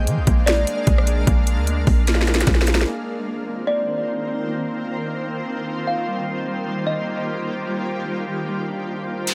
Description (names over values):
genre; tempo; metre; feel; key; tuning
hip hop, atmospheric cloud-rap; 150 BPM; 4/4; half-time; C minor; A4 = 440 Hz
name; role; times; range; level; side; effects
shimmering ambient pad; sustained chords; 0.0-9.3 s; Eb3 to F5; -29 LUFS; equal; chorus, built-in reverb, sidechain pumping
Celtic harp; arpeggios; 0.0-9.3 s; G3 to Ab4; -32 LUFS; equal; low-pass filter, delay
warm 808-style bass; bass; 0.0-2.9 s; Bb1 to F3; -21 LUFS; equal; none
trap drum kit; drums; 0.1-2.9, 9.3 s; hi-hat, kick drum, rim click, snare drum; -22 LUFS; equal; overdrive
kalimba; melody; 0.5-1.2, 3.7-7.6 s; D5 to F5; -29 LUFS; equal; low-pass filter, delay
downlifter; sound effects; 9.3 s; none; -22 LUFS; equal; none
room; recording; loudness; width
little or no reverb; none; -22 LUFS; mono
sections
0.0-2.9 A section; 2.9-9.3 B section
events
drum fill 2.1-2.9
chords
0.0 Bb7; 2.9 Cm11; 6.1 Ebmaj9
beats
0.07 0.47 0.87 | 1.27 1.67 2.07 2.47 | 2.87 3.27 3.67 4.07 | 4.47 4.87 5.27 5.67 | 6.07 6.47 6.87 7.27 | 7.67 8.07 8.47 8.87 | 9.27